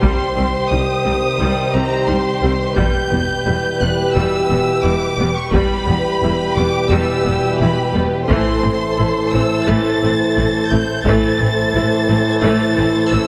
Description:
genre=cinematic, epic orchestral film score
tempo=87 BPM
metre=4/4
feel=straight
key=unclear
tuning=A4 = 440 Hz
part: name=warm symphonic violin section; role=melody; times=0.0-13.3 s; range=Bb5 to A6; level=-25 LUFS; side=equal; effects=none
part: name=dark symphonic violin section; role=second line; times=0.0-13.3 s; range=G4 to C5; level=-24 LUFS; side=equal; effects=none
part: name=rich symphonic viola section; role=accompaniment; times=0.0-13.2 s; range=E3 to E4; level=-25 LUFS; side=equal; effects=none
part: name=bright trombone section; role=sustained chords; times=0.0-13.3 s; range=A2 to E3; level=-26 LUFS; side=equal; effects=none
part: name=clear French horn section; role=sustained chords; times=0.0-13.3 s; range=G3 to G4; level=-24 LUFS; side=equal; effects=none
part: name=rich symphonic cello section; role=bass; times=0.0-13.2 s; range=C2 to A2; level=-25 LUFS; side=equal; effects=none
part: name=rich symphonic double bass section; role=bass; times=0.0-13.2 s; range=E1 to C2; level=-26 LUFS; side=equal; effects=none
part: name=taiko ensemble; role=drums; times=0.0-11.7 s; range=none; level=-24 LUFS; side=equal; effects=none
room=moderate scoring stage reverb, RT60 1.7 s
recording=heavily compressed radio sound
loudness=-17 LUFS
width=mono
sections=0.0-13.3 A section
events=none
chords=0.0 Cm; 2.8 Em; 8.3 Am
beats=| 0.02 0.71 1.40 2.09 | 2.78 3.47 4.16 4.85 | 5.54 6.23 6.92 7.61 | 8.30 8.99 9.68 10.37 | 11.05 11.74 12.43 13.12

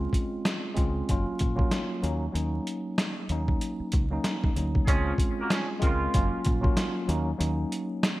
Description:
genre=hip hop, boom-bap hip-hop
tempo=95 BPM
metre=4/4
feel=swing 59% on 16ths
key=Db major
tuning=A4 = 441 Hz
part: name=tine electric piano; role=accompaniment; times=0.0-8.2 s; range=Gb3 to F4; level=-30 LUFS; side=equal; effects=medium stereo tremolo, cassette tape, high-pass filter, low-pass filter
part: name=deep dub fingered electric bass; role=bass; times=0.0-7.6 s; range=Gb1 to Eb2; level=-30 LUFS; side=equal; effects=none
part: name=boom bap sampler-style drum kit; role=drums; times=0.1-8.2 s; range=hi-hat, kick drum, snare drum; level=-27 LUFS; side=equal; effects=gated reverb
part: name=mellow horn section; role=stabs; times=4.9-6.4 s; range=Db3 to Bb4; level=-32 LUFS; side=right 3 dB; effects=high-pass filter, low-pass filter, ping-pong delay
room=light reverb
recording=bright 1980s-style digital production, vinyl crackle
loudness=-25 LUFS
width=side -17 dB against mid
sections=0.0-4.9 A section; 4.9-8.2 B section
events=none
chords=0.0 Dbmaj7; 1.1 Gbmaj7; 2.0 Ebm7; 4.9 Dbmaj7; 6.1 Gbmaj7; 7.1 Ebm7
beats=0.45 1.08 1.72 | 2.35 2.98 3.61 4.24 | 4.87 5.50 6.14 6.77 | 7.40 8.03

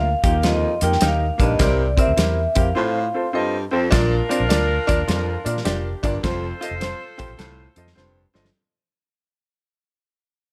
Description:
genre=uptempo 1960s-style soul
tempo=104 BPM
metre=4/4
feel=swing 66% on 8ths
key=Bb major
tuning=A4 = 440 Hz
part: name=vibraphone with medium hard mallets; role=melody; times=0.0-3.3 s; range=D5 to G5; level=-25 LUFS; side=equal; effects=none
part: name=clear concert grand piano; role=accompaniment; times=0.0-8.5 s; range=Bb3 to Eb5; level=-27 LUFS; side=equal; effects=none
part: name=vintage muted fingered electric bass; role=bass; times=0.0-8.5 s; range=F1 to Bb2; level=-26 LUFS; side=equal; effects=none
part: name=vintage hollow-body jazz guitar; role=riff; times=0.2-8.5 s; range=C4 to A4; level=-32 LUFS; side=equal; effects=none
part: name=warm soul drum kit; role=drums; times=0.2-8.5 s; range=hi-hat, kick drum, snare drum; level=-24 LUFS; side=equal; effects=none
part: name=warm baritone saxophone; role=riff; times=0.4-8.5 s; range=F2 to C3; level=-30 LUFS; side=equal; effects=none
part: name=clear saxophone section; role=second line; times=3.9-8.3 s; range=D4 to C5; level=-30 LUFS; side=equal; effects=none
room=light reverb, studio ambience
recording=none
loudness=-20 LUFS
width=mono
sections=0.0-3.9 A section; 3.9-8.5 B section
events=break 2.8-3.9; fade-out 3.9-8.5; drum fill 8.0-8.5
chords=0.1 Eb; 1.6 C7; 2.8 F; 3.9 Bb; 6.2 F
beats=0.44 1.02 | 1.60 2.18 2.76 3.34 | 3.92 4.50 5.08 5.66 | 6.23 6.81 7.39 7.96

